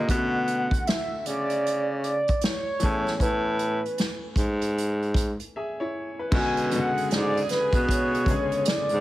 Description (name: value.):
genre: R&B, neo-soul.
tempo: 77 BPM.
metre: 4/4.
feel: swing 63% on 16ths.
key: B dorian.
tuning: A4 = 440 Hz.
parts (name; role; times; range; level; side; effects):
mellow horn-like synth lead; melody; 0.0-9.0 s; B4 to G#5; -27 LUFS; equal; chorus, slapback echo.
clear concert grand piano; accompaniment; 0.0-9.0 s; C#3 to E5; -32 LUFS; left 2 dB; none.
breathy baritone saxophone; bass; 0.0-9.0 s; G#2 to C#3; -26 LUFS; equal; none.
unplugged drum kit; drums; 0.1-9.0 s; crash cymbal, hi-hat, kick drum, snare drum; -27 LUFS; equal; none.
bright saxophone section; stabs; 6.3-9.0 s; C#3 to G#4; -34 LUFS; right 5 dB; none.
room: light reverb, studio reverb.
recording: heavily compressed radio sound.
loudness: -23 LUFS.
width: side -16 dB against mid.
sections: 0.0-6.3 A section; 6.3-9.0 B section.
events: break 5.5-6.3.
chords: 0.1 Bm9; 2.8 Amaj9; 6.3 Bm69.